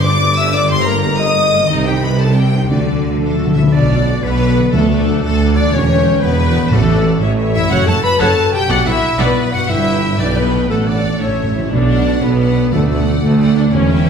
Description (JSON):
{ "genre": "cinematic", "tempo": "120 BPM (dotted quarters)", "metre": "6/8", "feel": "straight", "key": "unclear", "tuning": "A4 = 439 Hz", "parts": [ { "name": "rich symphonic violin section", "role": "melody", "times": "0.0-14.1 s", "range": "A4 to E6", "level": "-26 LUFS", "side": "left 3 dB", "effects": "none" }, { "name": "clear symphonic violin section", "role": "second line", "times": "0.0-14.1 s", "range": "A4 to E6", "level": "-24 LUFS", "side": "left 2 dB", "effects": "none" }, { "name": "hollow concert flute", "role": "second line", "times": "0.0-14.1 s", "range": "A4 to E6", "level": "-26 LUFS", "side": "left 2 dB", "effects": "none" }, { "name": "rich symphonic viola section", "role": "accompaniment", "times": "0.0-14.1 s", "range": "G3 to G5", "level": "-24 LUFS", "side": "right 1 dB", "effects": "none" }, { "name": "mellow French horn section", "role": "sustained chords", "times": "0.0-14.1 s", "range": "A3 to E5", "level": "-19 LUFS", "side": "left 3 dB", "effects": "none" }, { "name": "concert harp", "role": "arpeggios", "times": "0.0-14.1 s", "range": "F#2 to D6", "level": "-23 LUFS", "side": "left 3 dB", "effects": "none" }, { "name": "mellow tuba", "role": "bass", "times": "0.0-14.1 s", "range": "E1 to D2", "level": "-20 LUFS", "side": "right 2 dB", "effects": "none" }, { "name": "rich studio cello section", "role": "bass", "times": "0.0-14.1 s", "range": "D2 to D3", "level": "-20 LUFS", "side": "right 2 dB", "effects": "none" }, { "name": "rich symphonic double bass section", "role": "bass", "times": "0.0-14.1 s", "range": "E1 to D2", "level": "-19 LUFS", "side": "right 2 dB", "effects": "none" }, { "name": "timpani", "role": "percussion", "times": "0.0-0.2, 2.7-7.2, 11.2-13.2 s", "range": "G2 to D3", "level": "-20 LUFS", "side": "left 2 dB", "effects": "none" }, { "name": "warm clarinet", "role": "second line", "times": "3.2-11.7 s", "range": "A4 to B5", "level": "-26 LUFS", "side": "left 1 dB", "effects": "none" } ], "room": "wet recital hall reverb, RT60 1.4 s", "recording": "heard from further back in the room", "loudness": "-12 LUFS", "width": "side -6 dB against mid", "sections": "0.0-3.7 A section; 3.7-11.7 B section; 11.7-14.1 B section", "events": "timpani fill 2.7-3.7, 11.2-11.7", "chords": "0.0 G; 0.7 Eb/G; 1.7 Cm; 2.7 D; 3.7 Bm; 4.7 D; 5.7 Em; 6.7 D/A; 7.2 Aadd9; 7.7 F#m; 8.7 Bm; 9.7 G; 10.7 D/A; 11.2 A; 11.7 Bm; 12.7 D", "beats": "0.21 | 0.70 1.20 | 1.70 2.20 | 2.71 3.22 | 3.73 4.24 | 4.73 5.23 | 5.73 6.22 | 6.72 7.21 | 7.71 8.20 | 8.70 9.20 | 9.69 10.20 | 10.70 11.21 | 11.72 12.22 | 12.72 13.22 | 13.72" }